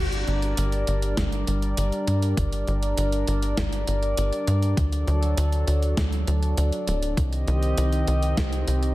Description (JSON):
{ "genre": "synthwave", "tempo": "100 BPM", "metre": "4/4", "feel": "straight", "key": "G minor", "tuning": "A4 = 439 Hz", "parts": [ { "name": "chorused pulse-width pad", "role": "sustained chords", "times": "0.0-8.9 s", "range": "Eb3 to Eb5", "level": "-28 LUFS", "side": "equal", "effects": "sidechain pumping" }, { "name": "tight sequencer bass", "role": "bass", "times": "0.0-8.9 s", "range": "D1 to G2", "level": "-23 LUFS", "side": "equal", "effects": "none" }, { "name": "clean 12-bit digital drum machine", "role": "drums", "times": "0.1-8.9 s", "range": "hi-hat, snare drum", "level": "-32 LUFS", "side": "equal", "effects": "overdrive" }, { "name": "electronic kick drum", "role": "drums", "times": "1.2-8.5 s", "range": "none", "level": "-27 LUFS", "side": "equal", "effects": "overdrive" } ], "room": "digital ambience", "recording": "none", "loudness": "-22 LUFS", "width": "side -17 dB against mid", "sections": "0.0-8.9 A section", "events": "none", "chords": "0.0 Gm; 4.8 D; 7.2 Cm" }